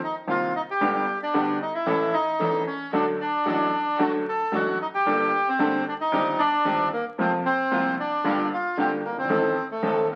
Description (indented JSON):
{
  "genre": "tango",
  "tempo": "113 BPM",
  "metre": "4/4",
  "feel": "rubato",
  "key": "G minor",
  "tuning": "A4 = 444 Hz",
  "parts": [
    { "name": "bandoneon", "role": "melody", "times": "0.0-10.2 s", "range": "A3 to A4", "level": "-27 LUFS", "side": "equal", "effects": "none" },
    { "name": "warm upright piano", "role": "accompaniment", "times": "0.3-10.1 s", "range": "Eb1 to A4", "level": "-28 LUFS", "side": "equal", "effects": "none" },
    { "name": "warm chamber string section", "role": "stabs", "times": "0.3-10.1 s", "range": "G3 to A4", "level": "-39 LUFS", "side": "equal", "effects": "none" }
  ],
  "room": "wet studio reverb, RT60 0.7 s",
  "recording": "very old 78 rpm record, vinyl crackle",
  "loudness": "-24 LUFS",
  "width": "mono",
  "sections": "0.0-10.2 A section",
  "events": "none",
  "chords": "0.0 F7sus4; 0.8 G; 1.9 A; 2.9 D; 5.1 Gmadd9; 6.1 Cmadd9/G; 7.2 Fsus4; 8.3 Gm7; 9.3 Adim"
}